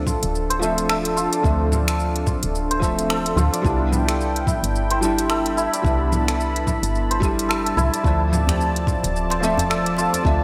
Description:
organic downtempo; 109 BPM; 4/4; swing 58% on 16ths; D dorian; A4 = 440 Hz
felt-muted upright piano; accompaniment; 0.0-10.4 s; F3 to E5; -28 LUFS; equal; analog chorus, sidechain pumping, digital delay
warm analog pad; sustained chords; 0.0-10.4 s; F3 to B5; -30 LUFS; equal; chorus, sidechain pumping
santur; arpeggios; 0.0-10.4 s; D4 to D5; -27 LUFS; equal; digital delay
woody FM bass; bass; 0.0-10.4 s; D1 to D2; -26 LUFS; equal; sidechain pumping
electronic kick drum; drums; 0.1-10.4 s; -26 LUFS; equal; overdrive
organic electronic drum kit; drums; 0.1-10.4 s; congas, finger snaps, hi-hat, shaker; -29 LUFS; equal; overdrive
djembe; percussion; 8.3-10.2 s; -31 LUFS; equal
moderate lush hall reverb, RT60 2.6 s; bright 1980s-style digital production; -21 LUFS; mono
0.0-10.4 A section
0.0 Dm7; 3.6 Cmaj7; 8.0 Dm7
0.34 0.89 | 1.44 1.99 2.54 3.09 | 3.65 4.20 4.75 5.30 | 5.85 6.40 6.95 7.50 | 8.05 8.60 9.15 9.70 | 10.25

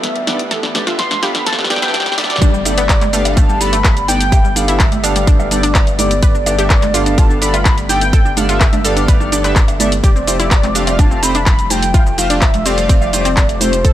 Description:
progressive house; 126 BPM; 4/4; straight; G mixolydian; A4 = 440 Hz
warm velvety synth lead; melody; 0.0-13.9 s; C5 to C6; -19 LUFS; left 1 dB; chorus, vintage 12-bit sampler grit, dub echo
warm analog pad; sustained chords; 0.0-13.9 s; F3 to B3; -26 LUFS; equal; chorus, sidechain pumping
analog pluck; arpeggios; 0.0-13.9 s; F3 to B4; -23 LUFS; equal; chorus, sidechain pumping, dub echo
saturated sub bass; bass; 0.0-13.9 s; F1 to G1; -20 LUFS; equal; sidechain pumping, high-pass filter
house drum kit; drums; 0.0-13.9 s; cabasa, handclaps, hi-hat, snare drum; -19 LUFS; equal; studio reverb
riser and swell; sound effects; 0.0-2.4 s; -27 LUFS; left 1 dB
chorused polysynth; stabs; 0.3-13.7 s; G2 to F5; -21 LUFS; right 1 dB; sidechain pumping, dub echo
congas and bongos; percussion; 0.3-13.7 s; -25 LUFS; right 5 dB; sidechain pumping on perc, studio reverb
electronic kick drum; drums; 2.4-13.9 s; -11 LUFS; equal; studio reverb
little or no reverb; high-pass filter; -11 LUFS; side -13 dB against mid
0.0-2.4 A section; 2.4-13.9 B section
build-up 0.0-2.4; drum fill 0.0-2.4; riser 0.0-2.4; swell 1.5-2.4; drop 2.4-13.9
0.0 Gadd9; 10.0 Fadd9
0.04 | 0.51 0.99 1.46 1.94 | 2.42 2.89 3.37 3.85 | 4.32 4.80 5.27 5.75 | 6.23 6.70 7.18 7.66 | 8.13 8.61 9.08 9.56 | 10.04 10.51 10.99 11.46 | 11.94 12.42 12.89 13.37 | 13.85

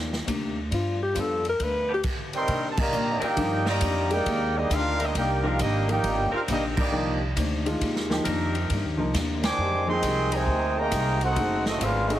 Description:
jazz, big band swing; 135 BPM; 4/4; swing 66% on 8ths; C minor; A4 = 439 Hz
picked steel-string acoustic guitar; accompaniment; 0.0-12.1 s; F#2 to G4; -34 LUFS; left 4 dB
upright bass; bass; 0.0-12.2 s; F#1 to C3; -29 LUFS; right 1 dB
swinging big-band drum kit; drums; 0.1-12.2 s; crash cymbal, hi-hat, kick drum, ride cymbal, snare drum; -32 LUFS; equal
breathy alto saxophone; melody; 0.7-2.0 s; F4 to B4; -27 LUFS; left 2 dB
warm upright piano; accompaniment; 1.1-12.2 s; Eb3 to D5; -30 LUFS; equal
bright saxophone section; sustained chords; 1.9-12.2 s; Eb3 to Bb4; -36 LUFS; left 1 dB
muted trombone section; second line; 2.3-12.2 s; C3 to G4; -30 LUFS; right 1 dB
warm trumpet section; melody; 2.4-12.2 s; Bb3 to D6; -27 LUFS; right 1 dB
light reverb; heavily compressed radio sound; -23 LUFS; side -12 dB against mid
0.0-2.5 A section; 2.5-12.2 B section
alto saxophone solo 0.0-2.5; band accent 2.7, 6.7, 9.4
0.0 Cm9; 0.7 G7; 2.5 Cm9; 9.6 Fm9; 11.4 F#dim7
0.27 | 0.71 1.16 1.60 2.04 | 2.49 2.93 3.37 3.82 | 4.26 4.71 5.15 5.59 | 6.04 6.48 6.92 7.37 | 7.81 8.26 8.70 9.14 | 9.59 10.03 10.47 10.92 | 11.36 11.80

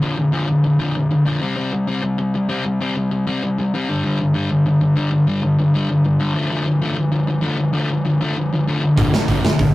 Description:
punk rock; 194 BPM; 4/4; straight; A4 = 441 Hz
sludgy distorted guitar; riff; 0.0-9.7 s; G2 to C4; -16 LUFS; left 1 dB; overdrive
overdriven semi-hollow guitar; riff; 9.0-9.7 s; Bb2 to F3; -24 LUFS; right 2 dB
fuzz picked electric bass; bass; 9.0-9.7 s; Bb1; -24 LUFS; right 1 dB; overdrive
big rock drum kit; drums; 9.0-9.7 s; hi-hat, kick drum, snare drum; -16 LUFS; equal
light reverb; rough rehearsal-room recording, tube saturation; -16 LUFS; side -17 dB against mid
0.0-9.7 A section
0.0 Bb; 1.4 C5; 3.9 G5; 6.4 Dm; 9.0 Bb
0.02 | 0.33 0.64 0.95 1.26 | 1.57 1.88 2.19 2.49 | 2.80 3.11 3.42 3.73 | 4.04 4.35 4.65 4.96 | 5.27 5.58 5.89 6.20 | 6.51 6.82 7.12 7.43 | 7.74 8.05 8.36 8.67 | 8.97 9.28 9.59

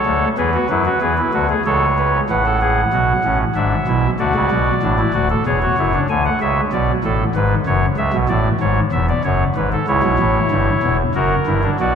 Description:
classical, baroque-style 3-part fugue for pipe organ; 95 BPM; 3/4; straight; A4 = 440 Hz
pipe organ, soft reed; solo; 0.0-11.9 s; D1 to G#5; -15 LUFS; equal
wet cathedral reverb, RT60 4.8 s; -15 LUFS; side -7 dB against mid
0.0-2.3 A section; 2.3-11.9 B section
0.4 E7; 1.6 A/C#; 2.3 F#m/A; 3.6 E/G#; 4.2 D; 5.5 C#m/E; 6.1 D5; 7.3 F#sus24; 8.0 C#m; 9.2 F#m; 9.9 C#dim; 11.1 F#7
| 0.37 1.01 1.65 | 2.29 2.93 3.56 | 4.19 4.83 5.46 | 6.09 6.72 7.35 | 7.97 8.60 9.24 | 9.87 10.51 11.14 | 11.79

